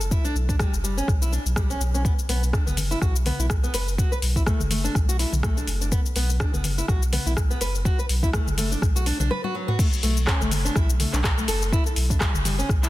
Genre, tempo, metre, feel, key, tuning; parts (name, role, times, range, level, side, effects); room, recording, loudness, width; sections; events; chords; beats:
afro house; 124 BPM; 4/4; swing 56% on 16ths; B minor; A4 = 440 Hz
warm sub bass; bass; 0.0-12.9 s; F#1 to B1; -25 LUFS; equal; sidechain pumping
afro-pop drum kit; drums; 0.0-12.9 s; crash cymbal, handclaps, hi-hat, rim click, shaker, toms; -28 LUFS; left 1 dB; soft clipping on snare
nylon-string guitar; arpeggios; 0.1-12.9 s; F#3 to B4; -29 LUFS; equal; sidechain pumping, ping-pong delay
electronic kick drum; drums; 0.1-12.8 s; -23 LUFS; equal
little or no reverb; dense, heavily limited modern master; -21 LUFS; side -16 dB against mid
0.0-9.8 A section; 9.8-12.9 B section
break 9.3-9.8; drum fill 9.3-9.8; drop 9.8-12.9
0.0 A9sus4 (rootless); 2.0 B5; 9.8 Asus2
| 0.11 0.60 1.08 1.56 | 2.05 2.53 3.02 3.50 | 3.98 4.47 4.95 5.43 | 5.92 6.40 6.89 7.37 | 7.85 8.34 8.82 9.31 | 9.79 10.27 10.76 11.24 | 11.72 12.21 12.69